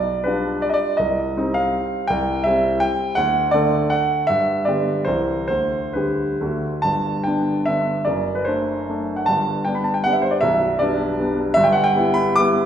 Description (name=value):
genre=classical, romantic triple-time dance for piano with dotted rhythms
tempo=129-176 BPM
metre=3/4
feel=rubato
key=G major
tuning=A4 = 445 Hz
part: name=warm grand piano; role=solo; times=0.0-12.7 s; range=B0 to D6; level=-18 LUFS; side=equal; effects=none
room=wet recital hall reverb, RT60 1.5 s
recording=recorded in a church or concert hall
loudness=-18 LUFS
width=side -9 dB against mid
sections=0.0-6.8 A section; 6.8-12.7 B section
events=none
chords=0.0 G7/B; 1.0 Cm; 2.1 C; 3.2 D; 4.3 G; 5.1 C; 5.5 G/D; 6.4 D; 6.8 G; 8.1 D7/F#; 9.3 G; 10.4 G/B; 11.6 Em/G